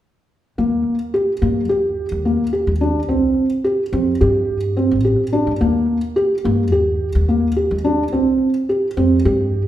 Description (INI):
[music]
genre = contemporary instrumental, chamber music in an uneven meter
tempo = 214 BPM (eighths)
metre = 9/8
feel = straight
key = Eb lydian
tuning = A4 = 443 Hz
[part]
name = felt-muted upright piano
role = arpeggios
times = 0.6-9.6 s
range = Bb3 to G4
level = -16 LUFS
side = equal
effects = none
[part]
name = upright bass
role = bass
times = 0.6-9.7 s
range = A1 to G2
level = -20 LUFS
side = equal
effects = none
[sound]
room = wet recital hall reverb, RT60 1.4 s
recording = minimal, uncompressed stereo recording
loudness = -15 LUFS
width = side -12 dB against mid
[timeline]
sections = 0.6-9.7 A section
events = none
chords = 0.6 Eb; 3.1 C5; 5.6 Eb; 8.1 C5